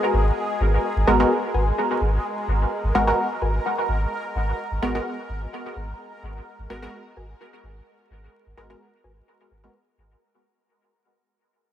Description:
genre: dub techno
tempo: 128 BPM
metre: 4/4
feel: swing 53% on 16ths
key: G# minor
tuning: A4 = 440 Hz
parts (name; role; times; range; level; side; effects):
- bubbling stepped-filter texture; texture; 0.0-10.2 s; G#3 to A#4; -30 LUFS; equal; chorus, built-in reverb
- pure sine sub bass; bass; 0.1-10.2 s; G#1; -23 LUFS; equal; transformer saturation
- filtered dub chord stab; stabs; 1.1-9.8 s; G#3 to A#4; -24 LUFS; equal; chorus, phaser, cassette tape, dub echo
- wavetable chord stab; riff; 1.2-9.1 s; F#4 to G#5; -34 LUFS; left 2 dB; none
room: light reverb, digital ambience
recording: dry, gritty hardware recording, vinyl crackle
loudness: -20 LUFS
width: side -11 dB against mid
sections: 0.0-10.2 A section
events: fade-out 0.0-10.2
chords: 0.0 G#m9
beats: 0.37 | 0.84 1.31 1.78 2.25 | 2.71 3.18 3.65 4.12 | 4.59 5.06 5.53 6.00 | 6.46 6.93 7.40 7.87 | 8.34 8.81 9.28 9.75

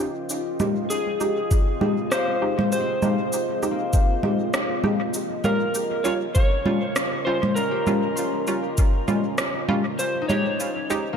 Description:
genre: ambient dub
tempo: 99 BPM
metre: 4/4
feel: swing 55% on 16ths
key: F minor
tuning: A4 = 440 Hz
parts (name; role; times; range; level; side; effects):
- deep dark ambient pad; sustained chords; 0.0-11.2 s; C4 to G5; -30 LUFS; equal; chorus, built-in reverb
- concert harp; arpeggios; 0.0-11.2 s; Bb3 to C6; -34 LUFS; left 5 dB; dub echo
- filtered dub chord stab; stabs; 0.0-11.1 s; G3 to G4; -29 LUFS; right 3 dB; analog chorus, dub echo
- electronic cabasa, congas and rim click; drums; 0.3-11.0 s; none; -25 LUFS; left 1 dB; overdrive, dub echo
- electric slide guitar; melody; 0.9-11.2 s; Ab4 to Db5; -27 LUFS; equal; dub echo
- electronic kick drum; drums; 1.5-8.9 s; none; -19 LUFS; equal; none
room: light reverb, digital ambience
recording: none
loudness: -20 LUFS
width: side -7 dB against mid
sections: 0.3-11.2 A section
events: none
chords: 0.3 Fm9; 5.1 Eb9; 10.0 Fm9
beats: | 0.30 0.90 1.51 2.11 | 2.72 3.33 3.93 4.54 | 5.14 5.75 6.36 6.96 | 7.57 8.18 8.78 9.39 | 9.99 10.60

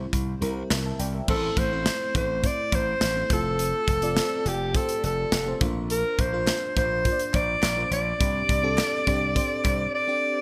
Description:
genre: 1980s-style pop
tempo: 104 BPM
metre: 4/4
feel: straight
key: unclear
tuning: A4 = 440 Hz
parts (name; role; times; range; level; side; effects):
- FM electric piano with soft pad layer; accompaniment; 0.0-10.4 s; G3 to A5; -34 LUFS; equal; chorus
- slap bass; bass; 0.0-9.9 s; F1 to C2; -32 LUFS; equal; none
- modern studio drum kit; drums; 0.1-9.8 s; crash cymbal, hi-hat, kick drum, snare drum; -30 LUFS; equal; none
- breathy alto saxophone; melody; 1.3-10.4 s; G4 to D5; -28 LUFS; equal; none
- group handclap; percussion; 6.5-9.8 s; none; -46 LUFS; equal; none
room: moderate plate reverb, RT60 1.8 s, small room ambience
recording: bright 1980s-style digital production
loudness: -25 LUFS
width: mono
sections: 0.0-1.3 A section; 1.3-10.4 B section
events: none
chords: 0.0 C; 1.3 Am; 3.3 F; 5.6 Bbadd9; 8.2 Csus2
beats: 0.13 0.71 | 1.28 1.86 2.44 3.01 | 3.59 4.17 4.75 5.32 | 5.90 6.48 7.05 7.63 | 8.21 8.78 9.36 9.94

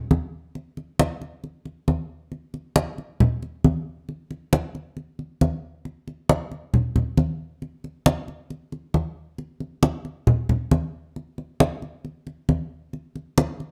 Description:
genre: latin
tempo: 136 BPM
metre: 4/4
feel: straight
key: none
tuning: none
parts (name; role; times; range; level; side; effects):
- congas; percussion; 0.1-13.7 s; none; -23 LUFS; equal; none
room: moderate studio reverb, RT60 0.8 s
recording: dark, warm production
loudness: -24 LUFS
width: mono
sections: 0.0-9.4 A section; 9.4-13.7 B section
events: none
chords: none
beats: 0.11 | 0.55 0.99 1.44 1.88 | 2.32 2.76 3.20 3.64 | 4.09 4.53 4.97 5.41 | 5.85 6.29 6.74 7.18 | 7.62 8.06 8.50 8.95 | 9.39 9.83 10.27 10.72 | 11.16 11.60 12.04 12.49 | 12.93 13.37

